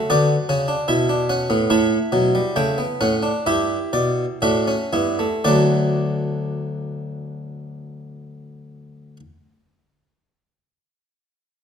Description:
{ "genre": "classical, baroque-style 4-part fugue for harpsichord", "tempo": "56-77 BPM", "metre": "4/4", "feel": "straight", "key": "D major", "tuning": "A4 = 440 Hz", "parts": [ { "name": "harpsichord", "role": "solo", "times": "0.0-9.2 s", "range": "D2 to G5", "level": "-19 LUFS", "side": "equal", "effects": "none" } ], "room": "moderate recital hall reverb, RT60 1.4 s", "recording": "close, detailed microphones", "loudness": "-18 LUFS", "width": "side -7 dB against mid", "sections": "0.0-5.5 A section; 5.5-9.7 B section", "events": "slowing down 0.0-5.5", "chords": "0.1 Bm; 1.7 A7; 5.5 D" }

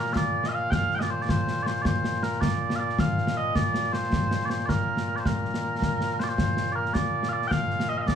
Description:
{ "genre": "scottish traditional, Scottish pipe music", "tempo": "106 BPM (dotted quarters)", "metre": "6/8", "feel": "straight", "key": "Bb major", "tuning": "A4 = 440 Hz", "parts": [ { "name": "mellow small bagpipes", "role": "melody", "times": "0.0-8.2 s", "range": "Bb2 to G5", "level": "-26 LUFS", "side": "equal", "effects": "none" }, { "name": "concert snare drum and concert bass drum", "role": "drums", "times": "0.1-8.2 s", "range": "none", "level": "-27 LUFS", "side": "left 1 dB", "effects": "none" } ], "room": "little or no reverb", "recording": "studio reverb", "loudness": "-24 LUFS", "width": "side -8 dB against mid", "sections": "0.0-6.4 A section; 6.4-8.2 A section", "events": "none", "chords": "none" }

